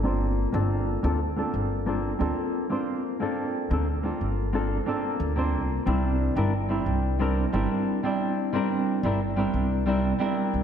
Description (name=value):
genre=sunset chillout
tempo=90 BPM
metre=4/4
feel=straight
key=G dorian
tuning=A4 = 440 Hz
part: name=nylon-string guitar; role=accompaniment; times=0.0-10.6 s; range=G3 to D5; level=-25 LUFS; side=equal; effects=auto-pan, low-pass filter, digital delay
part: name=upright bass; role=bass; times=0.0-10.6 s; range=G1 to D2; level=-27 LUFS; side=equal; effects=none
room=wet concert hall reverb, RT60 2.0 s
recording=dark, warm production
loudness=-24 LUFS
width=side -8 dB against mid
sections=0.0-10.6 A section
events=filter sweep on nylon-string guitar 0.0-10.6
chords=0.0 Gm11; 5.9 C9